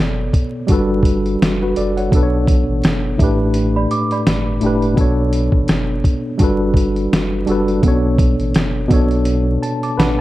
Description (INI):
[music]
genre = lo-fi hip hop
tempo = 84 BPM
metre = 4/4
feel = swing 57% on 16ths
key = B minor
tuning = A4 = 440 Hz
[part]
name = tine electric piano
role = accompaniment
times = 0.0-10.2 s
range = A2 to D6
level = -17 LUFS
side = equal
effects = overdrive, fast stereo tremolo, low-pass filter
[part]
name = warm sub bass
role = bass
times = 0.0-10.2 s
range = F#1 to B1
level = -20 LUFS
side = equal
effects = none
[part]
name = dusty soul sampler-style drum kit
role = drums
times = 0.3-10.2 s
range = hi-hat, kick drum, snare drum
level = -16 LUFS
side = equal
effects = none
[part]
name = small celesta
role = second line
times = 3.8-4.9 s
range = D5 to D6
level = -24 LUFS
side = right 2 dB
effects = low-pass filter, analog delay
[sound]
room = light reverb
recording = dark, warm production, vinyl crackle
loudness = -14 LUFS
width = side -16 dB against mid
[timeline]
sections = 0.0-10.2 A section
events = tine electric piano fill 9.3-10.2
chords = 0.0 Bm9; 0.7 Gmaj9; 2.1 Bm9; 3.2 A9sus4; 5.0 Bm9; 6.4 Gmaj9; 7.8 Bm9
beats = 0.69 1.40 | 2.12 2.83 3.55 4.26 | 4.98 5.69 6.40 7.12 | 7.83 8.55 9.26 9.98